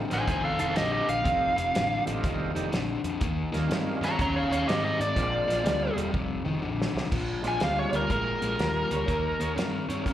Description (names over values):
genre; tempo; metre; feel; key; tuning
electric blues shuffle; 123 BPM; 4/4; swing 65% on 8ths; Bb mixolydian; A4 = 442 Hz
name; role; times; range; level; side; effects
tonewheel organ; accompaniment; 0.0-8.1 s; G3 to G4; -36 LUFS; right 6 dB; slow rotary speaker, overdrive, slapback echo
overdriven semi-hollow guitar; riff; 0.0-10.1 s; F2 to Db4; -31 LUFS; left 4 dB; slapback echo
vintage muted fingered electric bass; bass; 0.0-10.1 s; E1 to Ab2; -33 LUFS; right 1 dB; none
biting lead guitar; melody; 0.1-9.5 s; G4 to Bb5; -28 LUFS; equal; overdrive, slapback echo
warm soul drum kit; drums; 0.1-10.1 s; crash cymbal, hi-hat, kick drum, snare drum, toms; -32 LUFS; equal; none
electric guitar through a small old amp; second line; 8.9-10.1 s; Bb4 to Db5; -36 LUFS; right 2 dB; slapback echo
room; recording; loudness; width
light reverb, small room ambience; live gig heard through the venue's PA, club reverb; -25 LUFS; side -12 dB against mid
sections
0.0-7.1 A section; 7.1-10.1 B section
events
lead electric guitar solo 0.0-7.1; drum fill 6.1-7.1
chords
0.0 F9; 3.2 Eb9; 5.2 Bb9; 6.1 F5; 7.1 Bb9; 9.1 Eb7